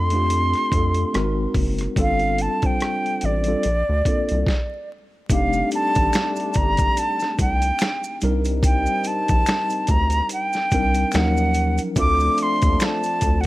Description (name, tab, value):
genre	R&B, neo-soul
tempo	72 BPM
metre	4/4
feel	swing 57% on 16ths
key	unclear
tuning	A4 = 441 Hz
part	breathy silver concert flute	melody	0.0-13.5 s	D5 to D6	-22 LUFS	right 1 dB	slapback echo
part	tine electric piano	accompaniment	0.0-13.5 s	F3 to C5	-26 LUFS	left 1 dB	overdrive, fast stereo tremolo
part	rubbery square bass	bass	0.0-13.5 s	F1 to F2	-22 LUFS	equal	none
part	boom bap sampler-style drum kit	drums	0.1-13.5 s	finger snaps, hi-hat, kick drum, rim click, snare drum	-22 LUFS	equal	none
part	warm trombone section	stabs	5.3-13.5 s	F3 to Eb4	-30 LUFS	left 3 dB	slapback echo
part	maracas and finger snaps	percussion	5.3-13.4 s	none	-34 LUFS	right 1 dB	none
room	little or no reverb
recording	vinyl crackle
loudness	-18 LUFS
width	side -17 dB against mid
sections	0.0-5.3 A section; 5.3-13.5 B section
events	stop 4.5-5.3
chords	0.0 Dm7; 1.1 Ab9; 2.0 G9sus4; 3.6 Bbmaj7; 5.3 F13 (rootless); 8.2 Cm9; 11.1 Ebm7; 12.0 Dm7